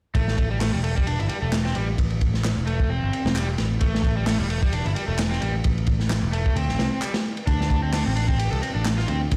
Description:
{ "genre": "breakbeat, breaks", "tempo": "131 BPM", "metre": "4/4", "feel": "swing 56% on 16ths", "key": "A minor", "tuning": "A4 = 445 Hz", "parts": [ { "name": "crunchy overdriven guitar", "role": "riff", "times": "0.1-9.2 s", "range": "G3 to A4", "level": "-31 LUFS", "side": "equal", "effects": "delay" }, { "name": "picked electric bass", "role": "bass", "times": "0.1-9.4 s", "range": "E1 to D2", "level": "-27 LUFS", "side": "equal", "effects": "none" }, { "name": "crunchy breakbeat drum kit", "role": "drums", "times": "0.1-9.4 s", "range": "hi-hat, kick drum, ride cymbal, snare drum", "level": "-27 LUFS", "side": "equal", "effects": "none" }, { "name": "electronic handclaps", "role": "drums", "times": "0.6-9.0 s", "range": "none", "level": "-38 LUFS", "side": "equal", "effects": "none" } ], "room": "light reverb, small room ambience", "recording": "played on a big sound system in a bare room, stone room reverb", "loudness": "-23 LUFS", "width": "mono", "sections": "0.2-9.4 A section", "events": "none", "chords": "0.2 Am7; 7.5 D7(no3)" }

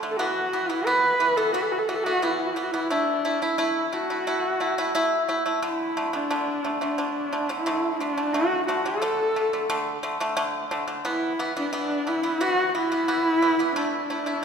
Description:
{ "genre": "mongolian traditional, Mongolian folk", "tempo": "88 BPM", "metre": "4/4", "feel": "straight", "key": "D gong mode", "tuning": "A4 = 439 Hz", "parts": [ { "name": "pipa", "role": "arpeggios", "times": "0.0-14.4 s", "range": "D3 to E4", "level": "-26 LUFS", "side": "equal", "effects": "none" }, { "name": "rich horsehead fiddle", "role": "melody", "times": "0.1-14.4 s", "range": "D4 to B4", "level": "-24 LUFS", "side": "equal", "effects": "none" } ], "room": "wet concert hall reverb, RT60 2.4 s", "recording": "minimal, uncompressed stereo recording", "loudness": "-22 LUFS", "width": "side -6 dB against mid", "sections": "0.0-14.4 A section", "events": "none", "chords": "0.2 E5; 2.9 A5; 5.6 D5; 11.1 E5; 13.8 A5" }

